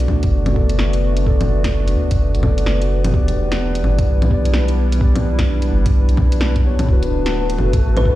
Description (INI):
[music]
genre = future garage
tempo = 128 BPM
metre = 4/4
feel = swing 63% on 16ths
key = unclear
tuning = A4 = 441 Hz
[part]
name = muted felt-like synth keys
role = accompaniment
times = 0.0-8.2 s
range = B2 to D5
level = -23 LUFS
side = left 1 dB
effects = chorus, sidechain pumping, tape echo
[part]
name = warbly tape-like pad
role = sustained chords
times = 0.0-8.2 s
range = G3 to B4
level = -25 LUFS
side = right 1 dB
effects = chorus, built-in reverb, sidechain pumping
[part]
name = warm sub bass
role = bass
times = 0.0-8.2 s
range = D1 to D2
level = -17 LUFS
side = equal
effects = sidechain pumping
[part]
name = garage drum kit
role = drums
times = 0.0-8.0 s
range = bongos, hi-hat, snare drum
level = -25 LUFS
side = left 1 dB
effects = overdrive, small room ambience
[part]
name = electronic kick drum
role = drums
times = 0.2-8.2 s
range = none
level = -16 LUFS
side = equal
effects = small room ambience
[part]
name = flickering grainy texture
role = texture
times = 7.5-8.2 s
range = A4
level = -31 LUFS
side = right 1 dB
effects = built-in reverb
[part]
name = kalimba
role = melody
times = 8.0-8.2 s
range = B4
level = -19 LUFS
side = left 3 dB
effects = vintage 12-bit sampler grit
[sound]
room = little or no reverb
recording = played on a big sound system in a bare room, cassette tape, large studio reverb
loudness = -14 LUFS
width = side -15 dB against mid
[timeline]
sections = 0.0-8.2 A section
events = none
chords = 0.0 Bm7; 3.1 Em7; 6.9 D6